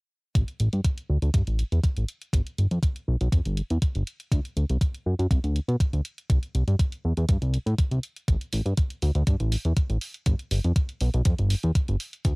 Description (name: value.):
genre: nu-disco, nu disco.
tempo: 121 BPM.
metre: 4/4.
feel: straight.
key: A minor.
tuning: A4 = 440 Hz.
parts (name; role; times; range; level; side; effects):
fat analog bass; bass; 0.3-12.3 s; G1 to B2; -23 LUFS; equal; tube saturation.
electronic hi-hat; drums; 0.3-12.4 s; none; -37 LUFS; right 1 dB; none.
electronic kick drum; drums; 0.3-12.4 s; none; -22 LUFS; equal; overdrive.
room: little or no reverb.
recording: dry, gritty hardware recording, cassette tape.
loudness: -23 LUFS.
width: side -35 dB against mid.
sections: 0.3-12.4 A section.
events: filter sweep on analog synth bass 0.3-12.4.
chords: none.